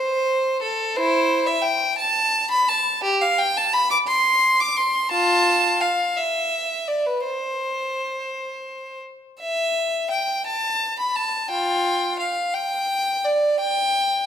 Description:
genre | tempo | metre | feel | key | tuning
classical, baroque-style suite movement for unaccompanied violin | 57 BPM (dotted quarters) | 6/8 | rubato | C major | A4 = 441 Hz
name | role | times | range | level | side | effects
clear violin | solo | 0.0-14.3 s | E4 to D6 | -19 LUFS | equal | none
room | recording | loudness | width
wet recital hall reverb, RT60 1.7 s | minimal, uncompressed stereo recording | -19 LUFS | side -9 dB against mid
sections
0.0-9.4 A section; 9.4-14.3 B section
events
none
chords
none

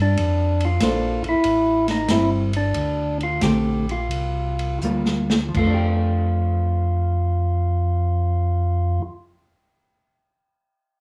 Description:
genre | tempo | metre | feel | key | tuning
soul jazz organ trio | 81-95 BPM | 4/4 | swing 69% on 8ths | F major | A4 = 440 Hz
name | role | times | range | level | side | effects
percussive tonewheel organ | melody | 0.0-9.0 s | D4 to G4 | -26 LUFS | equal | overdrive, stopped rotary speaker
mellow tonewheel organ | bass | 0.0-9.0 s | G1 to G2 | -24 LUFS | equal | overdrive, chorus vibrato, slow rotary speaker
vintage drum kit | drums | 0.2-5.8 s | crash cymbal, hi-hat, kick drum, ride cymbal, snare drum | -30 LUFS | equal | none
hollow-body jazz guitar | accompaniment | 0.8-9.2 s | D3 to C5 | -26 LUFS | equal | none
room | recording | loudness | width
moderate studio reverb, RT60 0.7 s | small room ambience | -21 LUFS | mono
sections
0.2-5.5 A section; 5.5-8.5 B section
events
slowing down 0.2-5.5; drum fill 4.8-5.5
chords
0.2 Bbmaj9; 1.4 Am7; 2.8 D7sus4; 4.1 C7sus4; 5.5 F69

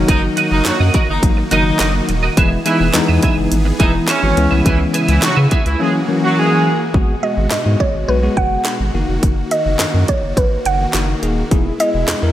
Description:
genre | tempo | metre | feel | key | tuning
dance-pop | 105 BPM | 4/4 | straight | G# minor | A4 = 440 Hz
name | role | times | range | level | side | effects
bell-like tine electric piano | accompaniment | 0.0-12.3 s | D#3 to A#4 | -19 LUFS | left 2 dB | fast stereo tremolo, sidechain pumping
supersaw chords | sustained chords | 0.0-12.3 s | B2 to G#4 | -24 LUFS | right 1 dB | sidechain pumping
warm sub bass | bass | 0.0-12.3 s | D#1 to C#3 | -18 LUFS | equal | sidechain pumping
warm horn section | melody | 0.1-6.8 s | E3 to D#5 | -20 LUFS | right 2 dB | sidechain pumping, tape echo
twelve-string electric guitar | riff | 0.1-5.7 s | F#4 to E5 | -21 LUFS | right 5 dB | ensemble chorus, slapback echo
house drum kit | drums | 0.1-12.2 s | handclaps, hi-hat, kick drum, snare drum | -17 LUFS | equal | none
mallet-like synth pluck | melody | 7.2-12.3 s | B4 to F#5 | -19 LUFS | right 1 dB | chorus, slapback echo
room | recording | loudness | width
moderate lush hall reverb, RT60 1.8 s | big arena sound | -13 LUFS | side -12 dB against mid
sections
0.0-6.9 A section; 6.9-12.3 B section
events
drop 0.0-6.9; drums muted 5.8-6.9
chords
0.0 D#m; 2.4 E; 4.4 C#m7; 5.8 F#7; 6.9 G#m7; 8.9 D#m; 11.5 E

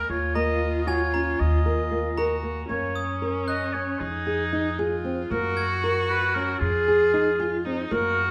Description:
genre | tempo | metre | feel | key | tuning
contemporary instrumental, chamber music in an uneven meter | 230 BPM (eighths) | 5/8 | straight | unclear | A4 = 440 Hz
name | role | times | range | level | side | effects
warm oboe | melody | 0.0-8.3 s | F4 to Eb5 | -30 LUFS | equal | none
rich viola | second line | 0.0-8.3 s | Db4 to Bb4 | -30 LUFS | equal | none
upright bass | bass | 0.0-8.3 s | Eb2 to Gb2 | -32 LUFS | equal | none
flamenco guitar | arpeggios | 0.4-8.2 s | Bb3 to Bb4 | -31 LUFS | equal | none
glockenspiel with brass mallets | texture | 0.4-6.6 s | Ab5 to Ab6 | -39 LUFS | equal | none
room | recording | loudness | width
moderate scoring stage reverb, RT60 1.6 s | none | -25 LUFS | mono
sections
0.0-2.7 A section; 2.7-8.3 B section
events
none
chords
0.1 Eb7sus2; 2.7 Gb; 4.0 Fm7; 5.3 Gbadd9; 6.6 Fm7

